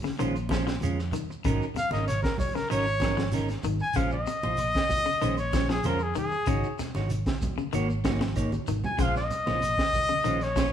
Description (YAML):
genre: afrobeat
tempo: 96 BPM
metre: 4/4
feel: straight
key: Bb minor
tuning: A4 = 440 Hz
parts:
  - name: electric guitar at the edge of break-up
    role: arpeggios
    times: 0.0-10.7 s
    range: C3 to F3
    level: -34 LUFS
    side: left 8 dB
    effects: none
  - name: congas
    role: percussion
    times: 0.0-10.7 s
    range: none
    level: -36 LUFS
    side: right 2 dB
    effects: none
  - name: shekere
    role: percussion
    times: 0.0-10.7 s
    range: none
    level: -38 LUFS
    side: equal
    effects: none
  - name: crunchy breakbeat drum kit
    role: drums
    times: 0.1-10.7 s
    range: hi-hat, kick drum, snare drum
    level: -31 LUFS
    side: right 1 dB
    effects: none
  - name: clean electric guitar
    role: stabs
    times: 0.2-10.7 s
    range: Gb3 to Db5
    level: -33 LUFS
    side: right 4 dB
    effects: none
  - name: fingered electric bass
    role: bass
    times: 0.2-10.7 s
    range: Ab1 to F2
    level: -31 LUFS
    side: equal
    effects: none
  - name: warm trumpet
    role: melody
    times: 1.8-10.7 s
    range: Ab4 to Ab5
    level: -27 LUFS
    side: left 1 dB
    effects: none
room: moderate large studio reverb, RT60 0.9 s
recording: band playing live in one room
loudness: -25 LUFS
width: side -9 dB against mid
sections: 0.0-10.7 A section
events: trumpet solo 0.0-10.7; drum fill 8.2-9.0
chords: 0.0 Bbm9; 1.5 Ab9sus4; 4.0 Bbm9; 6.5 Ab9sus4; 9.0 Bbm9